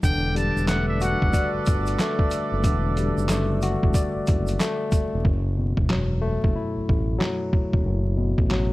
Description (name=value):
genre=hip hop, boom-bap hip-hop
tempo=92 BPM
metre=4/4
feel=swing 63% on 16ths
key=F# phrygian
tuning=A4 = 441 Hz
part: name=trumpet with metal mute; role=melody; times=0.0-1.5 s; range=E5 to A5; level=-29 LUFS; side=equal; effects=digital delay
part: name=barky tine electric piano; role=accompaniment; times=0.0-8.7 s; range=F#2 to D5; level=-26 LUFS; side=left 2 dB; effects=overdrive
part: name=mellow horn section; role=stabs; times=0.0-4.9 s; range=D4 to D5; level=-31 LUFS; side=right 3 dB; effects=digital delay
part: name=smooth synth bass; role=bass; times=0.0-8.7 s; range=E1 to A1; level=-25 LUFS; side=equal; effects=none
part: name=trip hop sampler-style drum kit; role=drums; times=0.0-8.7 s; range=handclaps, hi-hat, kick drum, snare drum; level=-23 LUFS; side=equal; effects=none
part: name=tube shaker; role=percussion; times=0.0-5.1 s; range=none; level=-41 LUFS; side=right 6 dB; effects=none
room=small room ambience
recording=vinyl crackle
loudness=-20 LUFS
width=side -18 dB against mid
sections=0.0-5.2 A section; 5.2-8.7 B section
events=hi-hats muted 5.2-8.7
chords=0.0 Em11; 5.2 F#m7